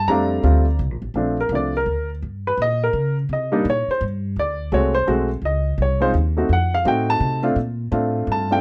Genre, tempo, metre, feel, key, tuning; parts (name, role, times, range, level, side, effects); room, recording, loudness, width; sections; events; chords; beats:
jazz piano trio; 168 BPM; 3/4; swing 63% on 8ths; Bb major; A4 = 441 Hz
dark baby grand piano; melody; 0.0-8.6 s; F3 to Bb5; -22 LUFS; equal
upright bass; bass; 0.0-8.6 s; A1 to Db3; -24 LUFS; equal
little or no reverb; dry, close 1970s-style studio recording; -21 LUFS; mono
0.0-1.2 A section; 1.2-8.6 B section
grand piano solo 1.2-8.6
0.0 Bbmaj13; 1.2 Bbmaj9; 2.2 Gdim; 3.3 Cm7; 4.4 D7#11; 5.4 Dbmaj7(no3); 6.5 F7b9; 7.6 Bbmaj9
| 0.09 0.44 0.80 | 1.16 1.51 1.87 | 2.23 2.58 2.94 | 3.30 3.65 4.01 | 4.37 4.72 5.08 | 5.43 5.79 6.14 | 6.50 6.86 7.21 | 7.57 7.92 8.28